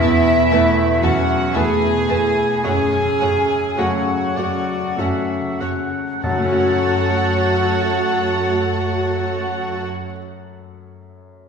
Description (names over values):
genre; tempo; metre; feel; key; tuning
cinematic; 47-60 BPM; 3/4; rubato; F# minor; A4 = 440 Hz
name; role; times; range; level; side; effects
warm symphonic violin section; melody; 0.0-9.8 s; E5 to G#5; -28 LUFS; left 2 dB; none
hollow concert flute; second line; 0.0-9.8 s; E5 to G#5; -25 LUFS; equal; none
rich symphonic violin section; second line; 0.0-9.8 s; C#5 to A5; -30 LUFS; left 2 dB; none
warm clarinet; second line; 0.0-9.8 s; A3 to F#5; -28 LUFS; equal; none
bright baby grand piano; accompaniment; 0.0-11.5 s; E2 to C#5; -25 LUFS; left 1 dB; none
dark symphonic viola section; accompaniment; 0.0-9.8 s; A3 to B4; -28 LUFS; right 1 dB; none
mellow French horn section; sustained chords; 0.0-9.8 s; E3 to G#4; -24 LUFS; left 1 dB; none
concert harp; arpeggios; 0.0-10.2 s; E2 to C#5; -27 LUFS; left 2 dB; none
dark symphonic double bass section; bass; 0.0-9.8 s; E2 to F#2; -27 LUFS; right 4 dB; none
warm symphonic cello section; bass; 0.0-9.8 s; E4 to G#4; -24 LUFS; right 4 dB; none
warm oboe; second line; 3.8-9.8 s; C#5 to A5; -27 LUFS; right 1 dB; none
timpani; percussion; 6.2-9.8 s; F#2; -31 LUFS; left 2 dB; none
room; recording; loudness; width
wet scoring stage reverb, RT60 2.0 s; heard from further back in the room; -16 LUFS; side -6 dB against mid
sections
0.0-6.2 A section; 6.2-10.0 B section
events
slowing down 0.0-6.2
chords
0.0 Esus4; 2.6 F#m